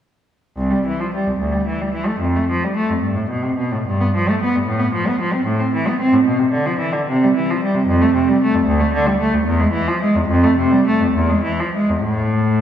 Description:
classical, baroque-style suite movement for unaccompanied cello; 65-76 BPM (dotted quarters); 6/8; rubato; C major; A4 = 441 Hz
rich cello; solo; 0.6-12.6 s; C2 to C4; -15 LUFS; equal
wet scoring stage reverb, RT60 1.5 s; heard from further back in the room; -15 LUFS; side -10 dB against mid
0.6-12.6 A section
| 0.56 1.40 | 2.21 3.00 | 3.84 4.65 | 5.45 6.24 | 7.06 7.86 | 8.65 9.45 | 10.28 11.12 | 12.02

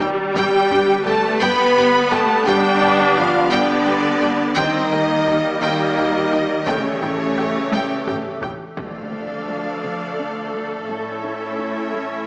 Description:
cinematic, hybrid orchestral and electronic film score; 57 BPM (dotted quarters); 6/8; straight; D harmonic minor from 8.8 s; A4 = 441 Hz
warm symphonic violin section; melody; 0.0-8.5 s; G5; -26 LUFS; equal
warm symphonic viola section; accompaniment; 0.0-12.3 s; G3 to A4; -22 LUFS; equal
bright trombone section; sustained chords; 0.0-8.4 s; Bb2 to B3; -26 LUFS; equal
hollow soft pad; sustained chords; 0.0-12.3 s; D3 to Bb5; -28 LUFS; equal; ensemble chorus
resonant blip pluck; arpeggios; 0.0-12.2 s; D3 to G4; -31 LUFS; equal
rich symphonic double bass section; bass; 0.0-8.5 s; A1 to G2; -33 LUFS; equal
taiko ensemble; drums; 0.0-10.1 s; -32 LUFS; equal
warm symphonic violin section; second line; 0.4-12.3 s; A4 to B5; -23 LUFS; equal
dark French horn section; sustained chords; 0.4-12.3 s; E3 to B4; -21 LUFS; equal
warm symphonic cello section; bass; 0.4-12.3 s; D2 to B3; -25 LUFS; equal
impact; sound effects; 8.8-10.9 s; -36 LUFS; equal
wet scoring stage reverb, RT60 1.6 s; small speaker sound; -16 LUFS; side -29 dB against mid
0.0-8.8 A section; 8.8-12.3 B section
drum fill 0.0-0.4, 7.7-8.8; impact 8.8-10.9
0.4 G; 4.6 Eb; 6.7 A7; 8.8 Dm; 10.9 A
| 0.36 1.41 | 2.46 3.51 | 4.57 5.62 | 6.67 7.72 | 8.78 9.83 | 10.88 11.94

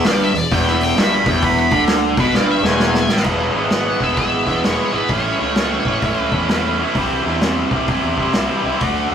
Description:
blues rock power trio and southern rock; 130 BPM; 4/4; swing 64% on 8ths; A4 = 441 Hz
octave-fuzz lead guitar; melody; 0.0-6.8 s; B4 to B5; -22 LUFS; left 1 dB; distortion
overdriven electric guitar; riff; 0.0-9.1 s; E2 to F#4; -17 LUFS; equal
vintage drum kit; drums; 0.0-8.9 s; crash cymbal, hi-hat, kick drum, snare drum; -20 LUFS; equal
growling fingered electric bass; bass; 0.1-9.1 s; E1 to C3; -25 LUFS; equal; overdrive
moderate studio reverb, RT60 0.6 s; rough rehearsal-room recording; -14 LUFS; side -8 dB against mid
0.0-3.3 A section; 3.3-9.1 B section
lead electric guitar solo 0.0-3.3; drum fill 2.3-3.3
0.0 E5; 3.3 E; 5.1 A; 7.0 C
0.05 0.51 0.96 | 1.42 1.88 2.34 2.80 | 3.26 3.72 4.18 4.65 | 5.11 5.57 6.04 6.50 | 6.96 7.42 7.88 8.35 | 8.81

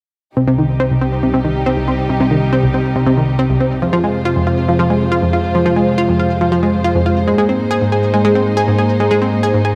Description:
trance; 139 BPM; 4/4; straight; A4 = 439 Hz
dark studio string section; sustained chords; 0.4-9.8 s; C2 to C5; -18 LUFS; equal
analog pluck; arpeggios; 0.4-9.7 s; C2 to Ab4; -17 LUFS; equal; subtle chorus, digital delay
wet concert hall reverb, RT60 1.9 s, small room ambience; -15 LUFS; mono
0.4-9.8 A section
filter sweep on synth pluck 0.4-9.8
0.4 Cm; 3.8 Fm; 7.3 Abadd9
| 0.37 0.80 1.23 1.66 | 2.10 2.53 2.96 3.39 | 3.82 4.25 4.68 5.12 | 5.55 5.98 6.41 6.84 | 7.27 7.71 8.14 8.57 | 9.00 9.43

